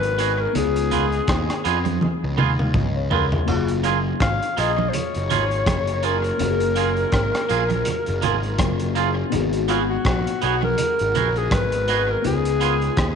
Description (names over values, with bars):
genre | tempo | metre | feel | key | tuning
lovers rock reggae | 82 BPM | 4/4 | swing 58% on 16ths | F# major | A4 = 440 Hz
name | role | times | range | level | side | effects
warm alto saxophone | melody | 0.0-13.2 s | E#4 to E#5 | -24 LUFS | left 2 dB | tape echo
mellow FM electric piano | accompaniment | 0.0-13.2 s | A#3 to E#5 | -28 LUFS | left 10 dB | chorus, phaser
fuzz picked electric bass | bass | 0.0-13.2 s | F#1 to E#2 | -25 LUFS | equal | overdrive
crunchy breakbeat drum kit | drums | 0.0-13.2 s | hi-hat, kick drum, rim click, splash cymbal, toms | -25 LUFS | equal | tape echo
twangy electric guitar | stabs | 0.2-12.7 s | A#3 to G#4 | -26 LUFS | right 10 dB | warbly pitch drift
congas | percussion | 0.6-12.4 s | none | -30 LUFS | right 9 dB | none
room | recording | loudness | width
moderate echo chamber reverb, RT60 2.1 s | 1960s-style stereo with parts hard left and right, nothing above 10.9 kHz | -18 LUFS | side -6 dB against mid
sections
0.0-13.2 A section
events
drum fill 2.0-3.5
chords
0.0 G#m7; 0.6 C#7; 3.5 F#maj9; 9.3 G#m7; 12.2 C#7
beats
| 0.55 1.28 2.02 2.75 | 3.48 4.21 4.94 5.67 | 6.40 7.13 7.86 8.59 | 9.32 10.05 10.79 11.52 | 12.25 12.98